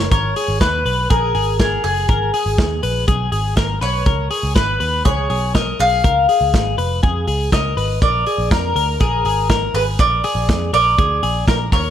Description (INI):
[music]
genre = jangly indie pop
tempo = 122 BPM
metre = 4/4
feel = straight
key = G# dorian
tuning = A4 = 440 Hz
[part]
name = mandolin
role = melody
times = 0.0-11.9 s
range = G#4 to E#5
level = -19 LUFS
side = left 1 dB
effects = slapback echo
[part]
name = twelve-string electric guitar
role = arpeggios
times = 0.0-11.9 s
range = G#4 to C#5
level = -22 LUFS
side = left 4 dB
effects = slapback echo
[part]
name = vintage muted picked electric bass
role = bass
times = 0.0-11.9 s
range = E#1 to E#2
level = -21 LUFS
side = equal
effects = none
[part]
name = modern studio drum kit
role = drums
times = 0.1-11.8 s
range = hi-hat, kick drum, snare drum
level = -20 LUFS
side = right 1 dB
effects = none
[sound]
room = light reverb, small room ambience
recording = none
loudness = -15 LUFS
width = side -10 dB against mid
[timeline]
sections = 0.1-11.9 A section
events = none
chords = 0.1 G#madd9; 4.1 C#; 8.0 A#7